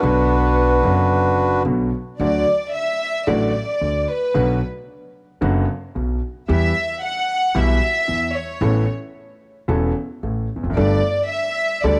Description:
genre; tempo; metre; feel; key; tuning
tango; 112 BPM; 4/4; rubato; D major; A4 = 440 Hz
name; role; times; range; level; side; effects
bandoneon; melody; 0.0-1.6 s; D4 to B4; -21 LUFS; equal; none
warm studio violin section; second line; 0.0-12.0 s; B3 to F#5; -24 LUFS; equal; none
warm concert grand piano; accompaniment; 0.0-12.0 s; E1 to A4; -24 LUFS; equal; none
upright bass; bass; 0.0-12.0 s; E1 to E2; -24 LUFS; equal; none
room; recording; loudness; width
light reverb, small room ambience; none; -20 LUFS; mono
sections
0.0-2.2 A section; 2.2-12.0 B section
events
violin section solo 2.2-12.0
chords
0.0 Bm; 2.2 D; 4.4 Bm; 6.5 Em; 8.6 Aadd9; 10.8 Gsus2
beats
| 0.03 0.57 1.11 1.66 | 2.21 2.75 3.28 3.82 | 4.36 4.89 5.42 5.96 | 6.49 7.02 7.55 8.08 | 8.61 9.15 9.68 10.22 | 10.76 11.30 11.84

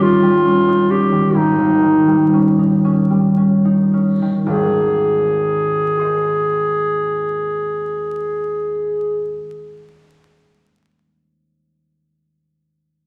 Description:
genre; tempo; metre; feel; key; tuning
classical, romantic duo for clarinet and harp; 34-46 BPM (dotted quarters); 12/8; rubato; Ab major; A4 = 441 Hz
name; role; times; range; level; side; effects
clear clarinet; melody; 0.0-9.4 s; Eb4 to Ab4; -18 LUFS; equal; none
concert harp; accompaniment; 0.0-10.9 s; Ab1 to Eb5; -19 LUFS; equal; none
room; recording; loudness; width
wet scoring stage reverb, RT60 1.7 s; vinyl crackle; -16 LUFS; mono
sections
0.0-4.5 A section; 4.5-10.5 B section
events
slowing down 0.0-4.5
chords
0.0 Eb7/Ab; 4.5 Ab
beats
1.34 2.84 | 4.49 5.99 7.50 8.99

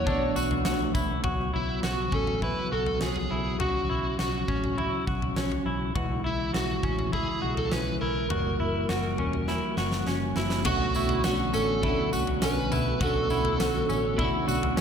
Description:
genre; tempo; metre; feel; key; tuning
dream pop; 102 BPM; 4/4; straight; B minor from 10.7 s; A4 = 440 Hz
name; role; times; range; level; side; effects
overdriven slide guitar; melody; 0.0-14.2 s; E4 to C#5; -31 LUFS; right 2 dB; ping-pong delay
clean electric guitar; accompaniment; 0.0-1.8, 10.6-14.8 s; B2 to C#5; -33 LUFS; right 5 dB; tremolo, analog chorus
percussive tonewheel organ; sustained chords; 0.0-14.8 s; C#3 to F#4; -32 LUFS; right 1 dB; fast rotary speaker
semi-hollow electric guitar; arpeggios; 0.0-14.8 s; C#4 to F#4; -32 LUFS; left 2 dB; lush chorus, ping-pong delay
vintage muted fingered electric bass; bass; 0.0-14.8 s; E1 to B1; -33 LUFS; equal; none
glockenspiel with rubber mallets; texture; 0.0-1.4, 10.7-14.8 s; C#6 to E6; -40 LUFS; right 2 dB; none
huge arena drum kit; drums; 0.1-14.8 s; crash cymbal, kick drum, snare drum, tambourine, toms; -31 LUFS; left 1 dB; none
room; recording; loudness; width
moderate scoring stage reverb, RT60 1.8 s, small room ambience; none; -25 LUFS; side -7 dB against mid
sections
0.0-1.2 A section; 1.2-10.7 B section; 10.7-14.8 A section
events
drum fill 9.5-10.7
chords
0.1 Bm9; 1.2 Bsus2; 6.0 C#m; 8.3 F#7b9; 10.7 Bm9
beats
0.07 0.66 | 1.25 1.83 2.42 3.01 | 3.60 4.19 4.78 5.36 | 5.95 6.54 7.13 7.72 | 8.30 8.89 9.48 10.07 | 10.66 11.25 11.83 12.42 | 13.01 13.60 14.19 14.78

